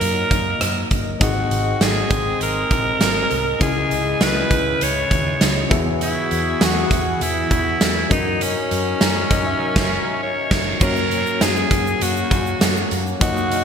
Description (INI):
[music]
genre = 1980s-style pop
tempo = 100 BPM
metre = 4/4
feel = straight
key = unclear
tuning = A4 = 440 Hz
[part]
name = raspy alto saxophone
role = melody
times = 0.0-13.6 s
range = C#4 to C#5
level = -22 LUFS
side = equal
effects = digital delay
[part]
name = FM electric piano with tremolo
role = accompaniment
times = 0.0-13.6 s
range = G#2 to E5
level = -26 LUFS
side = left 4 dB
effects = tube saturation
[part]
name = chorused pulse-width pad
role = sustained chords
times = 0.0-13.6 s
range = C#3 to D#5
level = -28 LUFS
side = equal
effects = none
[part]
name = vintage muted fingered electric bass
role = bass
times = 0.0-13.6 s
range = F#1 to F#2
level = -26 LUFS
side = equal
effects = none
[part]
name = big rock drum kit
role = drums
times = 0.0-13.6 s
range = crash cymbal, hi-hat, kick drum, rim click, snare drum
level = -20 LUFS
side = right 1 dB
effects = gated reverb
[part]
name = tube shaker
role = percussion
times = 10.8-13.6 s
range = none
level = -39 LUFS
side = right 12 dB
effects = none
[sound]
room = wet lush hall reverb, RT60 2.4 s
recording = bright 1980s-style digital production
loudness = -16 LUFS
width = side -7 dB against mid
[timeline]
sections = 0.0-10.8 A section; 10.8-13.6 B section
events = band accent 9.6-10.8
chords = 0.0 D#m/F#; 1.2 G#; 3.6 C#madd9; 5.7 Eadd9; 8.1 F#6; 10.8 F#